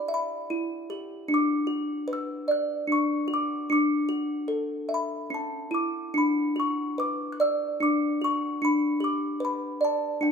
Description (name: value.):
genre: children's music.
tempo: 50 BPM (dotted quarters).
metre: 6/8.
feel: rubato.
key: unclear.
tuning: A4 = 442 Hz.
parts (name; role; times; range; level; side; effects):
music box; solo; 0.0-10.3 s; C#4 to F#6; -25 LUFS; equal; none.
room: wet recital hall reverb, RT60 1.7 s.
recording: minimal, uncompressed stereo recording.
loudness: -25 LUFS.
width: side -6 dB against mid.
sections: 0.0-10.3 A section.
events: none.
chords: 0.0 Em7; 1.3 Bm; 3.7 D; 4.9 Bm11; 6.1 Bm; 8.6 G.